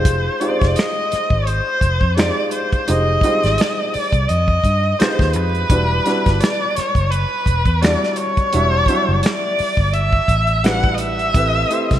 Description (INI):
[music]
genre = R&B, neo-soul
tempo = 85 BPM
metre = 4/4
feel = swing 55% on 16ths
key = unclear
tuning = A4 = 440 Hz
[part]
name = dark erhu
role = melody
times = 0.0-12.0 s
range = B4 to F#5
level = -19 LUFS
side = equal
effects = none
[part]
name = warm upright piano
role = accompaniment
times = 0.0-12.0 s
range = F#3 to E5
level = -23 LUFS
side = right 1 dB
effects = none
[part]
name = vintage muted fingered electric bass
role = bass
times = 0.0-12.0 s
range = E1 to G2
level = -19 LUFS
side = equal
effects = none
[part]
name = warm soul drum kit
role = drums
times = 0.1-12.0 s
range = finger snaps, hi-hat, kick drum, snare drum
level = -19 LUFS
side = equal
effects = none
[sound]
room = moderate lush hall reverb, RT60 2.4 s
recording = bright 1980s-style digital production, vinyl crackle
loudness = -15 LUFS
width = side -11 dB against mid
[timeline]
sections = 0.0-12.0 A section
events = none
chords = 0.0 Fm9; 5.7 Em9; 11.3 Am9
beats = | 0.05 0.76 1.46 2.17 | 2.87 3.58 4.29 4.99 | 5.70 6.40 7.11 7.81 | 8.52 9.23 9.93 10.64 | 11.34